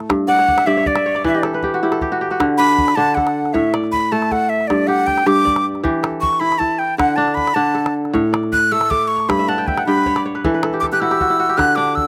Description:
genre	west african traditional, West African string and xylophone music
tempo	104 BPM (dotted quarters)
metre	12/8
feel	straight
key	unclear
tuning	A4 = 440 Hz
part	kora	arpeggios	0.0-12.1 s	G2 to G5	-20 LUFS	equal	none
part	calabash	percussion	0.0-12.1 s	none	-28 LUFS	equal	none
part	breathy bright jazz flute	melody	0.3-12.1 s	D5 to F#6	-19 LUFS	equal	none
room	little or no reverb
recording	recorded outdoors, with no room sound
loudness	-17 LUFS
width	mono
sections	0.0-12.1 A section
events	flute solo 0.0-12.1; kora fill 0.3-2.4, 9.4-11.6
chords	0.1 G5; 1.2 N.C.; 2.4 D; 3.5 A; 4.7 G5; 5.8 Em; 7.0 D5; 8.1 A; 9.3 G; 10.4 N.C.

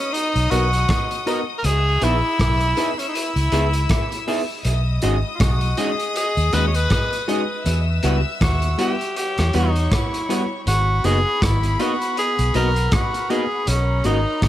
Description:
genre	lovers rock reggae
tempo	80 BPM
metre	4/4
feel	swing 57% on 16ths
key	unclear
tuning	A4 = 439 Hz
part	clear tenor saxophone	melody	0.0-14.5 s	C#4 to C#5	-23 LUFS	equal	tape echo
part	warm studio string section	second line	0.0-14.5 s	B3 to E6	-29 LUFS	left 4 dB	tape echo
part	crunchy breakbeat drum kit	drums	0.1-14.5 s	hi-hat, kick drum, rim click	-24 LUFS	equal	gated reverb
part	vintage muted fingered electric bass	bass	0.4-14.5 s	F#1 to E2	-20 LUFS	equal	none
part	tine electric piano	accompaniment	0.5-14.2 s	G3 to A#4	-28 LUFS	left 4 dB	lush chorus
part	electric guitar through a small old amp	stabs	0.5-14.2 s	F#4 to F#5	-28 LUFS	right 4 dB	tape echo
room	light reverb, small room ambience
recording	none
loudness	-18 LUFS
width	side -13 dB against mid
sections	0.0-14.5 A section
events	none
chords	0.0 G#m7 (rootless); 1.6 C#m7; 4.6 B6; 7.7 Emadd9; 10.7 G#m7; 13.7 Bmaj7

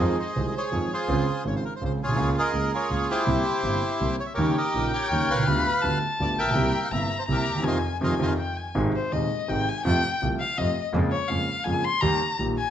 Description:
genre	tango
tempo	164 BPM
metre	3/4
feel	rubato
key	F minor, Ab major from 8.8 s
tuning	A4 = 440 Hz
part	bandoneon	melody	0.0-8.3 s	Eb4 to G5	-26 LUFS	equal	none
part	warm concert grand piano	accompaniment	0.0-12.6 s	Eb1 to G4	-26 LUFS	right 1 dB	none
part	clear double bass	bass	0.0-12.5 s	G1 to F2	-30 LUFS	right 1 dB	none
part	warm violin	second line	4.4-12.7 s	C5 to C6	-28 LUFS	left 4 dB	none
room	moderate large studio reverb, RT60 0.8 s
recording	nothing above 8.0 kHz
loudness	-22 LUFS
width	side -10 dB against mid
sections	0.0-8.8 A section; 8.8-12.7 B section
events	band accent 7.7-8.8; violin solo 8.8-12.7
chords	0.0 Fm7; 1.1 Dbmaj7; 2.2 Bbm7/Db; 3.3 C7; 4.4 Eb7; 5.5 G7/D; 6.6 C7; 7.7 Fm7; 8.8 Ab; 9.9 F; 10.9 Bbm7/F; 12.0 Eb

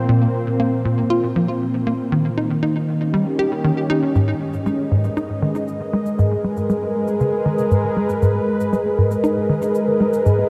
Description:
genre	ambient, sequencer-driven space music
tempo	118 BPM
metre	4/4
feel	straight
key	G# minor from 4.2 s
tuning	A4 = 440 Hz
part	sweeping resonant pad	sustained chords	0.0-10.5 s	Bb2 to Eb5	-22 LUFS	equal	chorus
part	tight sequencer bass	riff	0.1-10.4 s	G#2 to G4	-22 LUFS	equal	subtle chorus, cassette tape, tape echo
part	cabasa and congas	percussion	4.2-10.5 s	none	-43 LUFS	equal	tape echo
room	wet huge ambient reverb, RT60 7.8 s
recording	cassette tape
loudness	-20 LUFS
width	mono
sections	0.0-4.2 A section; 4.2-10.5 B section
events	fade-in on drum 4.2-10.5; filter sweep on analog synth bass 4.2-10.5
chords	0.0 Bbsus2; 2.1 Eb7; 4.2 G#madd9

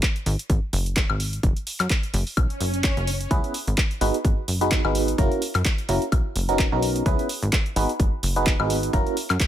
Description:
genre	piano house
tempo	128 BPM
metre	4/4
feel	swing 56% on 16ths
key	unclear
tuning	A4 = 440 Hz
part	electronic kick drum	drums	0.0-9.5 s	none	-22 LUFS	equal	none
part	punchy analog drum machine	drums	0.0-9.5 s	handclaps, hi-hat, woodblock	-27 LUFS	left 1 dB	overdrive
part	plucky analog bass	bass	0.3-9.4 s	F#1 to F#2	-25 LUFS	equal	sidechain pumping
part	swell	sound effects	2.5-3.3 s	none	-30 LUFS	equal	none
part	barking FM electric piano	riff	3.3-9.2 s	A#3 to B4	-25 LUFS	right 1 dB	chorus, phaser, tremolo, vintage 12-bit sampler grit, sidechain pumping, digital delay
room	little or no reverb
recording	none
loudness	-20 LUFS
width	side -11 dB against mid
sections	0.0-9.5 A section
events	swell 2.5-3.3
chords	0.3 F#sus2; 1.4 N.C.; 3.3 C#m7; 4.0 G#m7; 5.2 F#7; 6.1 Bmaj9; 7.1 C#m7; 7.8 G#m7; 8.9 F#7

